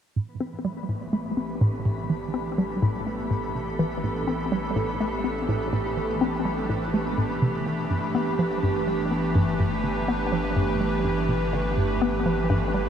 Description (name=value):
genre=ambient, sequencer-driven space music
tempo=124 BPM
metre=4/4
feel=straight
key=unclear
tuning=A4 = 439 Hz
part: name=evolving wavetable pad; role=sustained chords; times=0.4-12.9 s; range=E3 to B4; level=-27 LUFS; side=right 1 dB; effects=chorus, built-in reverb
part: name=hollow square pluck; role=riff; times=0.2-12.8 s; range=G2 to C4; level=-26 LUFS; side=equal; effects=chorus, phaser, tape echo
part: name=warm sub bass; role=bass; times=0.2-12.9 s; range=G1 to A1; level=-36 LUFS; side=equal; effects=none
part: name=pulsing gated texture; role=texture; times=0.2-12.9 s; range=B3 to B5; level=-34 LUFS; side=equal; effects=chorus, built-in reverb
room=wet shimmer reverb, RT60 6.9 s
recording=dark, warm production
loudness=-23 LUFS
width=side -8 dB against mid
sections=0.2-12.9 A section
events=fade-in on sub bass 0.2-12.9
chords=0.2 Am; 7.9 G